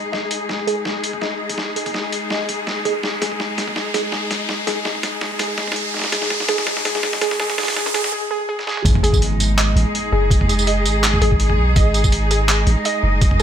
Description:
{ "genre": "half-time drum and bass", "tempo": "165 BPM", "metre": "4/4", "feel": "swing 54% on 16ths, half-time", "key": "unclear", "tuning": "A4 = 440 Hz", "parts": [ { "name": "clear chamber cello section", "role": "sustained chords", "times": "0.0-13.4 s", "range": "G#3 to D#5", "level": "-24 LUFS", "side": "left 1 dB", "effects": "sidechain pumping" }, { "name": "riser and impact", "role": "sound effects", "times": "0.0-10.3 s", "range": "none", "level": "-26 LUFS", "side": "equal", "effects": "none" }, { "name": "warbly dusty pluck", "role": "arpeggios", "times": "0.1-13.4 s", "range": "G#4 to D#5", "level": "-25 LUFS", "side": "right 2 dB", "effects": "chorus, dub echo" }, { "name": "boom bap sampler-style drum kit", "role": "drums", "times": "0.1-13.4 s", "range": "handclaps, hi-hat, snare drum, tambourine, toms", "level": "-22 LUFS", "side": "equal", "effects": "overdrive, high-pass filter on hats, high-pass filter on snare, high-pass filter on toms, high-pass filter on perc" }, { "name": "long sustained 808-style bass", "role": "bass", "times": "8.8-13.4 s", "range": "F#1 to B1", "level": "-18 LUFS", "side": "equal", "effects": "none" }, { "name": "electronic kick drum", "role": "drums", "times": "8.8-13.3 s", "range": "none", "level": "-16 LUFS", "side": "equal", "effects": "overdrive" } ], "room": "light reverb", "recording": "high-pass filter", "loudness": "-17 LUFS", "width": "side -9 dB against mid", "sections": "0.0-8.9 A section; 8.9-13.4 B section", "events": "build-up 0.0-8.9; drum fill 0.0-8.1, 8.6; riser 0.0-8.1; filter sweep on synth pluck 0.0-8.9; break 8.1-8.9; drop 8.9-13.4; impact 8.9-10.3", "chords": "0.0 G#5" }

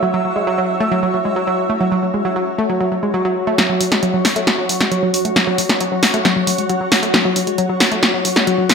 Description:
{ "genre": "driving peak-time techno", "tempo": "135 BPM", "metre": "4/4", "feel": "straight", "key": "unclear", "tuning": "A4 = 440 Hz", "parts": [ { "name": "analog pluck", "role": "riff", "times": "0.0-8.6 s", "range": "F#3 to A3", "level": "-19 LUFS", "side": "equal", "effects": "chorus, tube saturation, digital delay" }, { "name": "granular cloud pad", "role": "texture", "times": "0.0-8.7 s", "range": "F#4 to F#5", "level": "-20 LUFS", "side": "equal", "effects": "built-in reverb" }, { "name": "punchy analog drum machine", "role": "drums", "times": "3.6-8.7 s", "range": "hi-hat, snare drum", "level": "-16 LUFS", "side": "equal", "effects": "gated reverb" } ], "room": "moderate plate reverb, RT60 1.4 s, digital ambience", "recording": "bright 1980s-style digital production", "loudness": "-14 LUFS", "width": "side -5 dB against mid", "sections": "0.0-3.6 A section; 3.6-8.7 B section", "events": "build-up 3.6-8.7; drum fill 3.6-8.7", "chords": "0.0 F#5" }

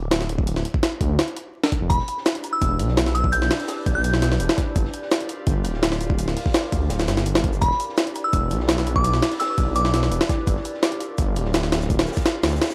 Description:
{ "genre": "drum and bass, jungle", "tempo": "168 BPM", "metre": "4/4", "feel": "straight", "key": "unclear", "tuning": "A4 = 438 Hz", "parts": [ { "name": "detuned saw bass", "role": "bass", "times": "0.0-12.6 s", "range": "D1 to D2", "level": "-26 LUFS", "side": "equal", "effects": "none" }, { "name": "jungle sampler-style drum kit", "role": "drums", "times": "0.1-12.7 s", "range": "hi-hat, kick drum, snare drum", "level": "-24 LUFS", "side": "equal", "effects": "none" }, { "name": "glassy synth bell", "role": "melody", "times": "1.9-4.5, 7.6-10.1 s", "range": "B5 to G6", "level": "-28 LUFS", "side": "equal", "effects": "chorus, dub echo" }, { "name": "crunchy breakbeat drum kit", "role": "drums", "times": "1.9-12.7 s", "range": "hi-hat, shaker, snare drum", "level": "-38 LUFS", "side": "equal", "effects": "none" } ], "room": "small room ambience", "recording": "dry, gritty hardware recording, transformer saturation, vinyl crackle", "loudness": "-22 LUFS", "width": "mono", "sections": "0.0-12.7 A section", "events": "none", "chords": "0.0 N.C.; 1.9 Em7; 4.8 Gm7; 7.6 Em7; 10.5 Gm7" }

